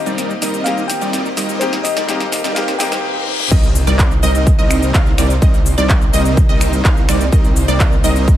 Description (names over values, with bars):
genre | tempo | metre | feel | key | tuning
EDM, festival progressive house | 126 BPM | 4/4 | straight | C minor | A4 = 443 Hz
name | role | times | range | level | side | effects
bell-like FM electric piano | melody | 0.0-3.0 s | C5 to G5 | -23 LUFS | left 2 dB | chorus, tremolo, tape echo
bright grand piano | accompaniment | 0.0-3.5 s | Eb3 to G4 | -23 LUFS | left 5 dB | sidechain pumping, tape echo
supersaw pad | sustained chords | 0.0-8.4 s | Bb3 to Eb5 | -29 LUFS | equal | none
riser, reverse cymbal and impact | sound effects | 0.0-5.4 s | none | -25 LUFS | left 1 dB | none
dense compressed supersaw | riff | 0.1-8.3 s | G3 to Eb5 | -21 LUFS | right 1 dB | sidechain pumping, low-pass filter, tape echo
big-room dance drum kit | drums | 0.1-8.4 s | crash cymbal, finger snaps, handclaps, hi-hat, shaker, snare drum, toms | -22 LUFS | left 1 dB | overdrive, high-pass filter on snare, high-pass filter on hats, high-pass filter on perc, high-pass filter on toms, high-pass filter on cymbals
wide unison pluck | arpeggios | 3.5-8.3 s | D5 to F5 | -22 LUFS | right 2 dB | sidechain pumping, tape echo
wide detuned saw bass | bass | 3.5-8.4 s | C2 | -17 LUFS | equal | chorus, sidechain pumping
electronic kick drum | drums | 3.5-8.4 s | none | -13 LUFS | equal | overdrive
room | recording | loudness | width
light reverb | high-pass filter, faint mains hum | -12 LUFS | side -12 dB against mid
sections
0.0-3.5 A section; 3.5-8.4 B section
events
build-up 0.0-3.5; drum fill 0.0-3.0, 3.3; filter sweep 0.0-3.5; reverse cymbal 2.6-3.5; drop 3.5-8.4; impact 3.5-5.4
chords
0.0 Cm7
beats
0.18 0.66 1.13 | 1.61 2.09 2.56 3.04 | 3.52 3.99 4.47 4.94 | 5.42 5.90 6.37 6.85 | 7.32 7.80 8.28